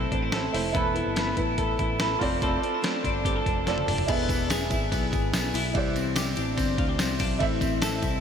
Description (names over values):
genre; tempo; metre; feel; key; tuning
jangly indie pop; 144 BPM; 4/4; straight; unclear; A4 = 440 Hz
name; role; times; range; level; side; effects
fingerpicked twelve-string acoustic guitar; accompaniment; 0.0-4.1 s; A2 to D5; -32 LUFS; right 3 dB; wide subtle chorus
warm upright piano; accompaniment; 0.0-8.2 s; E4 to E5; -33 LUFS; right 5 dB; none
twelve-string electric guitar; arpeggios; 0.0-8.2 s; E3 to A4; -28 LUFS; left 4 dB; tape echo
picked electric bass; bass; 0.0-8.2 s; E1 to D2; -32 LUFS; equal; none
dusty soul sampler-style drum kit; drums; 0.1-8.1 s; crash cymbal, hi-hat, kick drum, ride cymbal, snare drum, toms; -29 LUFS; equal; none
tambourine; percussion; 4.3-8.1 s; none; -40 LUFS; right 5 dB; none
room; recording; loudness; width
moderate huge ambient reverb, RT60 7.3 s; dreamy mix soaked in reverb; -23 LUFS; side -7 dB against mid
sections
0.0-4.1 A section; 4.1-8.2 B section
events
drum fill 3.7-4.1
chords
0.0 Am; 0.8 Esus4; 2.2 F6; 4.1 E; 5.8 Cadd9; 7.4 Am